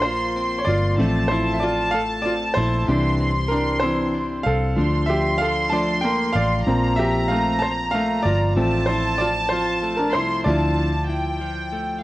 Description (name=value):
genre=six-eight pop ballad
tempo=63 BPM (dotted quarters)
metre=6/8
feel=straight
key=D minor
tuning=A4 = 440 Hz
part: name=warm studio violin section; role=second line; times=0.0-12.0 s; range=G5 to C6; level=-25 LUFS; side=equal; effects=cassette tape
part: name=clear baby grand piano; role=accompaniment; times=0.0-12.0 s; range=E3 to A5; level=-22 LUFS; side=right 1 dB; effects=cassette tape
part: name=direct-recorded clean electric guitar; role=arpeggios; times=0.0-12.0 s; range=E3 to G4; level=-31 LUFS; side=left 4 dB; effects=cassette tape
part: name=vintage muted fingered electric bass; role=bass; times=0.0-12.0 s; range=G1 to D2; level=-24 LUFS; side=equal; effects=none
room=moderate spring reverb, RT60 2.7 s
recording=home recording on cassette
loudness=-18 LUFS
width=side -17 dB against mid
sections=0.0-12.0 A section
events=grand piano solo 0.0-12.0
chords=0.0 Bbsus2; 1.0 F/A; 2.9 Cadd9; 4.8 Dm; 6.7 Bbsus2; 8.6 F/A; 10.5 Dmadd9